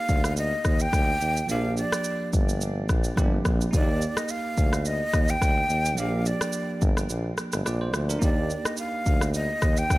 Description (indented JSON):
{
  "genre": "afrobeats",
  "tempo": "107 BPM",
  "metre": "4/4",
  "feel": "swing 55% on 16ths",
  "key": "unclear",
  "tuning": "A4 = 440 Hz",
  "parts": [
    { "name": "breathy jazz flute", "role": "melody", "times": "0.0-10.0 s", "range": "D5 to G5", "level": "-29 LUFS", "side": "equal", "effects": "tape echo" },
    { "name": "bell-like tine electric piano", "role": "accompaniment", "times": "0.0-10.0 s", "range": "F3 to D5", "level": "-32 LUFS", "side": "right 2 dB", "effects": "none" },
    { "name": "warm tuba", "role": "bass", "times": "0.1-10.0 s", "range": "G1 to Eb2", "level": "-27 LUFS", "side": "equal", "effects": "none" },
    { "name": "afro-pop drum kit", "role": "drums", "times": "0.1-10.0 s", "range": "kick drum, rim click, shaker", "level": "-25 LUFS", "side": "equal", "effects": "none" }
  ],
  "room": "digital ambience",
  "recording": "none",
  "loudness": "-22 LUFS",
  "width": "side -19 dB against mid",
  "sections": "0.0-10.0 A section",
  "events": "break 7.1-8.2",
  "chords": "0.0 Ebmaj7; 1.5 Bb6; 3.7 Ebmaj7; 6.0 Bb6; 8.2 Ebmaj7",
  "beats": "0.37 0.93 | 1.49 2.05 2.61 3.17 | 3.73 4.29 4.85 5.42 | 5.98 6.54 7.10 7.66 | 8.22 8.78 9.34 9.90"
}